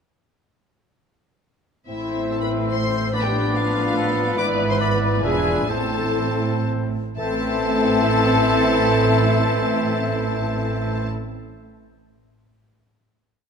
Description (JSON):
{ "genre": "classical, dramatic, fast romantic movement for symphony orchestra", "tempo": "114-146 BPM", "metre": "3/4", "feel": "straight", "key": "A minor", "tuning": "A4 = 440 Hz", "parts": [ { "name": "rich studio violin section", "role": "melody", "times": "1.9-11.1 s", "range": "E5 to D6", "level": "-29 LUFS", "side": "left 4 dB", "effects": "none" }, { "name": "dark clarinet", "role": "second line", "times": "1.9-11.1 s", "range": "D4 to A4", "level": "-31 LUFS", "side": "left 3 dB", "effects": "none" }, { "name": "flute section", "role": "second line", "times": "1.9-11.1 s", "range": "E4 to E5", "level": "-28 LUFS", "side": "left 2 dB", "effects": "none" }, { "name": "warm symphonic violin section", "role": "second line", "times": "1.9-11.1 s", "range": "E4 to D5", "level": "-30 LUFS", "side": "left 4 dB", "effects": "none" }, { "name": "warm bassoon", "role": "accompaniment", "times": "1.9-11.1 s", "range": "E3 to D4", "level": "-30 LUFS", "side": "right 2 dB", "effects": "none" }, { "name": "warm studio viola section", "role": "accompaniment", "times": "1.9-11.1 s", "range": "B3 to F4", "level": "-29 LUFS", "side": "equal", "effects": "none" }, { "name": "warm French horn section", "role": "sustained chords", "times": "1.9-11.1 s", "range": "E3 to E4", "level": "-28 LUFS", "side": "left 5 dB", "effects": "none" }, { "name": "bright trumpet section", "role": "stabs", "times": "1.9-11.1 s", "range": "A4 to C5", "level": "-29 LUFS", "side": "equal", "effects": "none" }, { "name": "rich symphonic cello section", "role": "bass", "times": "1.9-11.1 s", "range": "E2 to A2", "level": "-26 LUFS", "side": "right 4 dB", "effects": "none" }, { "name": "warm symphonic double bass section", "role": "bass", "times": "1.9-11.1 s", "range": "E1 to A1", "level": "-27 LUFS", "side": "right 3 dB", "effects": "none" }, { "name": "warm oboe", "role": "second line", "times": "2.3-11.1 s", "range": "A4 to E5", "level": "-30 LUFS", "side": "right 1 dB", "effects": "none" } ], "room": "moderate concert hall reverb, RT60 2.2 s", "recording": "none", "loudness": "-18 LUFS", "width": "side -6 dB against mid", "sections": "1.9-7.2 A section; 7.2-10.3 final chord", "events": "slowing down 3.8-7.2", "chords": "1.9 Am; 3.1 Bm7b5/A; 4.4 E7/G#; 5.2 E7b9; 5.7 Am", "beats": "| 1.88 2.30 2.72 | 3.13 3.55 3.96 | 4.38 4.80 5.24 | 5.70 6.17 6.66 | 7.18 7.70 8.22 | 8.74 9.27 9.79" }